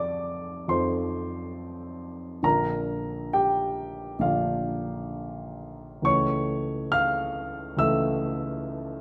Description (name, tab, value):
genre	classical, romantic character piece for solo piano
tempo	68 BPM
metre	4/4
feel	rubato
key	unclear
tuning	A4 = 440 Hz
part	dark grand piano	solo	0.0-9.0 s	Bb1 to F6	-28 LUFS	equal	none
room	moderate recital hall reverb, RT60 1.8 s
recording	none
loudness	-27 LUFS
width	mono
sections	0.0-9.0 A section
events	none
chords	0.0 F7; 2.4 Bb; 6.0 A/C#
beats	0.69 1.56 | 2.44 3.32 4.20 5.08 | 6.04 6.94 7.80 8.65